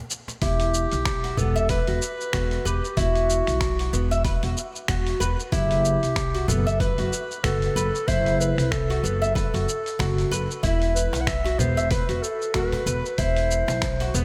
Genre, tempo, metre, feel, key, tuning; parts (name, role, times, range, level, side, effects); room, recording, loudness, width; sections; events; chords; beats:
organic downtempo; 94 BPM; 4/4; swing 57% on 16ths; E minor; A4 = 440 Hz
dusty soul sampler-style drum kit; drums; 0.1-14.2 s; congas, finger snaps, hi-hat, shaker; -33 LUFS; equal
cajon; percussion; 0.3-0.4, 11.1-14.1 s; -38 LUFS; equal
mellow clarinet; melody; 0.4-14.1 s; F#4 to F#5; -31 LUFS; equal; digital delay
oud; arpeggios; 0.4-14.2 s; B3 to E5; -30 LUFS; equal; digital delay
upright bass; bass; 0.4-14.2 s; E1 to C2; -28 LUFS; equal
electronic kick drum; drums; 0.4-14.0 s; -30 LUFS; equal
moderate lush hall reverb, RT60 2.9 s; big arena sound; -24 LUFS; mono
0.4-14.2 A section
0.4 Emadd9; 5.5 F#m7b5; 10.6 Esus2
| 0.42 1.06 1.70 2.33 | 2.97 3.61 4.25 4.89 | 5.53 6.16 6.80 7.44 | 8.08 8.72 9.36 9.99 | 10.63 11.27 11.91 12.55 | 13.19 13.82